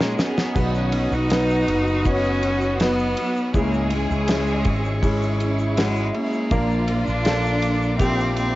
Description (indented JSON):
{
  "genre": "pop ballad",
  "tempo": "81 BPM",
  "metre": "4/4",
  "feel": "straight",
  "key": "B major",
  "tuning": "A4 = 440 Hz",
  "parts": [
    { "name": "clear cello", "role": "melody", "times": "0.0-8.6 s", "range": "G#3 to D#4", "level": "-24 LUFS", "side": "equal", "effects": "cassette tape" },
    { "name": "warm studio violin section", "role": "second line", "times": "0.0-8.6 s", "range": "E4 to G#4", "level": "-31 LUFS", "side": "equal", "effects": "cassette tape" },
    { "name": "clear concert grand piano", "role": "accompaniment", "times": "0.0-8.6 s", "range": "G#2 to C#5", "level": "-25 LUFS", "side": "left 1 dB", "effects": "cassette tape" },
    { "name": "warm studio string section", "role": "sustained chords", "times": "0.0-8.6 s", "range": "A#3 to D#6", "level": "-34 LUFS", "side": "right 1 dB", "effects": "cassette tape" },
    { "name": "fingerpicked steel-string acoustic guitar", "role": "arpeggios", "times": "0.0-8.6 s", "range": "A#2 to B4", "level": "-31 LUFS", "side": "right 4 dB", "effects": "none" },
    { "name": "fretless electric bass", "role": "bass", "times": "0.0-8.6 s", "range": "F#1 to A#2", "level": "-25 LUFS", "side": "equal", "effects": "wide subtle chorus" },
    { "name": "damped 70s drum kit", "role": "drums", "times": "0.0-8.5 s", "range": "crash cymbal, kick drum, ride cymbal, snare drum", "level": "-26 LUFS", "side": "equal", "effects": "cassette tape" },
    { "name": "egg shaker", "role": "percussion", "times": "0.0-8.5 s", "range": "none", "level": "-52 LUFS", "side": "left 4 dB", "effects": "none" }
  ],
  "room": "light reverb",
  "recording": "home recording on cassette, nothing above 7.7 kHz",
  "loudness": "-19 LUFS",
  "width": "side -17 dB against mid",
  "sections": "0.0-8.6 A section",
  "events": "drum fill 0.0-0.6",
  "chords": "0.0 D#m7/A#; 0.6 B; 3.5 C#m; 6.5 A#",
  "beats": "| 0.56 1.31 2.06 2.80 | 3.55 4.29 5.03 5.77 | 6.51 7.25 8.00"
}